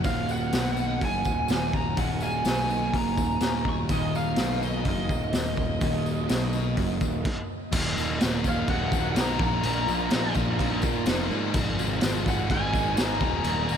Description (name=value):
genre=indie rock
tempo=125 BPM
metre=4/4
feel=straight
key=Eb minor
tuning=A4 = 440 Hz
part: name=crunchy overdriven guitar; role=riff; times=0.0-13.8 s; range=Eb2 to F4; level=-32 LUFS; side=right 10 dB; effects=wide subtle chorus, tape echo
part: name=sludgy distorted guitar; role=riff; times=0.0-13.8 s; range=Eb2 to F4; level=-32 LUFS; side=left 8 dB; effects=overdrive
part: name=fuzz picked electric bass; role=bass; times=0.0-13.8 s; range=Eb1 to Bb2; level=-31 LUFS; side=equal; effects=overdrive
part: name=raw garage drum kit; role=drums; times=0.0-13.6 s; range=crash cymbal, hi-hat, kick drum, snare drum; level=-28 LUFS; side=equal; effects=none
part: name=tambourine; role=percussion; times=0.0-13.8 s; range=none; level=-43 LUFS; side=left 7 dB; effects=none
part: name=bluesy overdriven lead guitar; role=melody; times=0.1-13.8 s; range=Eb5 to Db6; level=-31 LUFS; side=equal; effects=distortion, tape echo
part: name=phased analog pad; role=sustained chords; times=8.3-13.8 s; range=Eb4 to Bb5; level=-40 LUFS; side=left 1 dB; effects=none
room=moderate huge ambient reverb, RT60 6.4 s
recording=dreamy mix soaked in reverb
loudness=-23 LUFS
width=side -8 dB against mid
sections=0.0-7.7 A section; 7.7-13.8 B section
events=stop 7.3-7.7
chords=0.0 Ebm; 9.4 Bbsus4; 11.5 Fdim/Ab; 12.5 Absus2; 13.2 Ebm